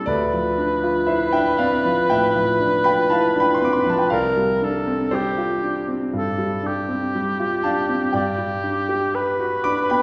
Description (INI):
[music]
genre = classical, impressionist duo for cor anglais and grand piano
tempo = 59 BPM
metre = 4/4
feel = rubato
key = unclear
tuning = A4 = 440 Hz
[part]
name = warm cor anglais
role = melody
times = 0.0-10.0 s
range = G4 to B4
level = -24 LUFS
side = equal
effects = none
[part]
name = clear concert grand piano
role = accompaniment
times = 0.0-10.0 s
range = C2 to D6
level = -24 LUFS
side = equal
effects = none
[sound]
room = wet recital hall reverb, RT60 1.5 s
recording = heard from further back in the room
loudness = -21 LUFS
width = mono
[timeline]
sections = 0.0-10.0 A section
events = none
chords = 0.1 Dm9; 4.1 Csus24; 8.1 Gmaj7